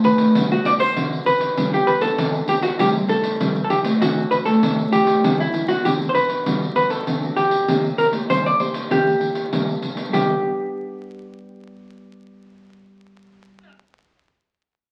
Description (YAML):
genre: samba and choro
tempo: 98 BPM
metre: 4/4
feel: straight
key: G major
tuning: A4 = 440 Hz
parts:
  - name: vintage hollow-body jazz guitar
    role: melody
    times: 0.0-13.7 s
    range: E4 to D5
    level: -22 LUFS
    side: equal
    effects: none
  - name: nylon-string guitar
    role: accompaniment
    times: 0.0-13.8 s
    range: G2 to G4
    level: -26 LUFS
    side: equal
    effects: none
  - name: pandeiro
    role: percussion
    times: 0.0-10.3 s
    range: none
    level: -26 LUFS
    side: equal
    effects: none
room: wet small room reverb, RT60 0.5 s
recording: very old 78 rpm record, vinyl crackle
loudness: -19 LUFS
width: mono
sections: 0.0-5.2 A section; 5.2-10.1 B section; 10.1-12.6 C section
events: none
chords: 0.4 Gmaj7; 2.8 Am7; 4.0 D7; 5.2 Gmaj7; 7.7 C7; 10.1 G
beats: | 0.35 0.96 1.57 2.18 | 2.79 3.41 4.02 4.63 | 5.24 5.85 6.46 7.07 | 7.68 8.30 8.91 9.52 | 10.14 10.75 11.36 11.98